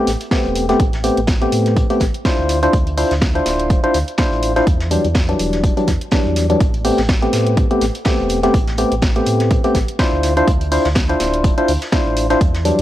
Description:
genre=deep house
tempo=124 BPM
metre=4/4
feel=swing 56% on 16ths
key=A minor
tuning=A4 = 440 Hz
part: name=percussive organ stab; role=stabs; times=0.0-12.8 s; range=E3 to C5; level=-17 LUFS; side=left 1 dB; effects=chorus, sidechain pumping, tape echo
part: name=sub bass with octave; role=bass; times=0.1-12.8 s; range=D1 to A2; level=-21 LUFS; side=equal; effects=tube saturation, sidechain pumping
part: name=house drum kit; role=drums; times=0.1-12.8 s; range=hi-hat, snare drum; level=-25 LUFS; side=equal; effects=overdrive
part: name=vintage brush drum kit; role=drums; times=0.1-12.8 s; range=hi-hat, snare drum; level=-31 LUFS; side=equal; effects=sidechain pumping on hats, high-pass filter on hats, high-pass filter on snare, high-pass filter on room
part: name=electronic kick drum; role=drums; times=0.3-12.5 s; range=none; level=-17 LUFS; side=equal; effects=overdrive
room=light reverb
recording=dry, gritty hardware recording, cassette tape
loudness=-14 LUFS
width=side -13 dB against mid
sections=0.0-12.8 A section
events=none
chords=0.0 Am9; 2.5 Dm9; 4.7 Em9; 6.6 Am9; 10.2 Dm9

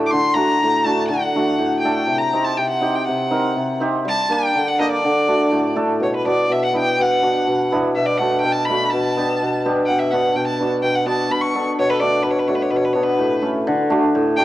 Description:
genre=klezmer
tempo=124 BPM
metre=2/4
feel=straight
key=D phrygian dominant, B minor from 6.0 s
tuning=A4 = 442 Hz
part: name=hammered dulcimer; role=accompaniment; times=0.0-14.4 s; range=A2 to Bb4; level=-18 LUFS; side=equal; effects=cassette tape
part: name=clear violin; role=melody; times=0.1-14.4 s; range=A4 to D6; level=-20 LUFS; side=equal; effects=cassette tape
room=moderate lush hall reverb, RT60 2.8 s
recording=home recording on cassette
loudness=-16 LUFS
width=side -14 dB against mid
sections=0.0-6.0 A section; 6.0-13.7 B section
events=speeding up 0.0-14.4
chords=0.0 D; 2.1 Cm; 4.1 Gm; 5.0 D; 6.0 Bm; 7.9 D/B; 8.9 G/B; 9.9 Bm; 13.2 A; 13.7 D

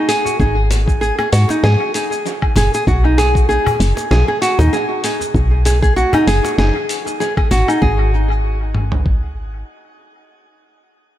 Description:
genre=organic downtempo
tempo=97 BPM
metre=4/4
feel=swing 55% on 16ths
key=G# minor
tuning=A4 = 441 Hz
part: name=nylon-string guitar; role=arpeggios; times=0.0-8.1 s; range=D#4 to G#4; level=-17 LUFS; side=equal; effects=tape echo, shimmer reverb
part: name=dusty soul sampler-style drum kit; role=drums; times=0.1-7.8 s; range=hi-hat, shaker, snare drum, woodblock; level=-24 LUFS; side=left 2 dB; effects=analog delay
part: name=woody FM bass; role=bass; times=0.4-9.6 s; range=F#1 to G#2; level=-15 LUFS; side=equal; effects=none
part: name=dusty soul sampler-style drum kit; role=drums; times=0.4-9.2 s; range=kick drum, toms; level=-17 LUFS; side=equal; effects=none
part: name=cajon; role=percussion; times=0.7-7.6 s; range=none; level=-25 LUFS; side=equal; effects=analog delay
room=light reverb, digital ambience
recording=echo-heavy mix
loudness=-13 LUFS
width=side -12 dB against mid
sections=0.0-7.8 A section; 7.8-10.3 B section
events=none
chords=0.0 G#m7; 7.8 N.C.

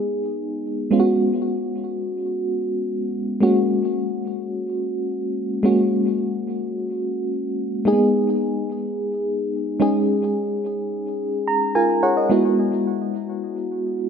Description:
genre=pop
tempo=free time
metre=none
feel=none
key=unclear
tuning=A4 = 435 Hz
part: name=mellow FM electric piano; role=solo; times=0.0-14.1 s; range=G#3 to A#5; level=-20 LUFS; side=equal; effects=chorus, tremolo, ping-pong delay
room=moderate lush hall reverb, RT60 2.1 s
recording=none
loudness=-20 LUFS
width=side -7 dB against mid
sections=0.0-12.3 A section; 12.3-14.1 B section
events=FM electric piano fill 11.2-12.3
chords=0.0 G#m; 0.9 C#7sus4/G#; 3.4 F#add9; 7.9 G#m; 9.8 C#sus2; 12.3 Eadd9

